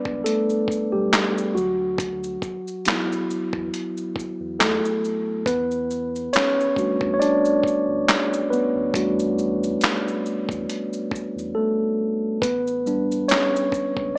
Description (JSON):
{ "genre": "lo-fi hip hop", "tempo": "69 BPM", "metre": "4/4", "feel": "swing 56% on 16ths", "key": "unclear", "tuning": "A4 = 440 Hz", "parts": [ { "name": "mellow tine electric piano", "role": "accompaniment", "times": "0.0-14.2 s", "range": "F#3 to D5", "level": "-21 LUFS", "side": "equal", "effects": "low-pass filter" }, { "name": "sub bass with octave", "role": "bass", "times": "0.1-14.1 s", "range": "A1 to E2", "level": "-39 LUFS", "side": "equal", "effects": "none" }, { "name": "dusty soul sampler-style drum kit", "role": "drums", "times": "0.1-14.1 s", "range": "handclaps, hi-hat, kick drum, shaker, snare drum", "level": "-23 LUFS", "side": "equal", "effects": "none" } ], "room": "light reverb", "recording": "small speaker sound", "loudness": "-20 LUFS", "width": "side -32 dB against mid", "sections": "0.0-14.2 A section", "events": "tine electric piano solo 0.0-14.2; drums muted 11.5-12.4", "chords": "0.0 A9sus4; 1.5 D6; 5.5 Em11; 12.4 A9sus4" }